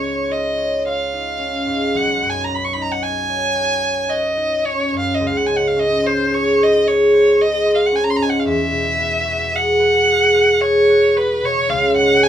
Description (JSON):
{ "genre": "classical, impressionist duo for violin and harp", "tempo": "56 BPM", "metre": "3/4", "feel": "rubato", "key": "Db mixolydian", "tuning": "A4 = 440 Hz", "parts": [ { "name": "rich violin", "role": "melody", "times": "0.0-12.3 s", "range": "B4 to Db6", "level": "-18 LUFS", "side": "equal", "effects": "none" }, { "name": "concert harp", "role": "accompaniment", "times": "0.0-12.3 s", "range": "Cb2 to Db5", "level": "-17 LUFS", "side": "equal", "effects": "none" } ], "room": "moderate studio reverb, RT60 0.5 s", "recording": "minimal, uncompressed stereo recording", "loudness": "-14 LUFS", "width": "side -10 dB against mid", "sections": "0.0-12.3 A section", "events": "none", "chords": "0.0 Dbadd9; 2.0 Cb69; 5.2 Dbmaj7; 8.5 Eadd9; 11.7 Db5", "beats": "0.87 | 1.96 3.04 4.10 | 5.21 6.31 7.40 | 8.46 9.52 10.62 | 11.68" }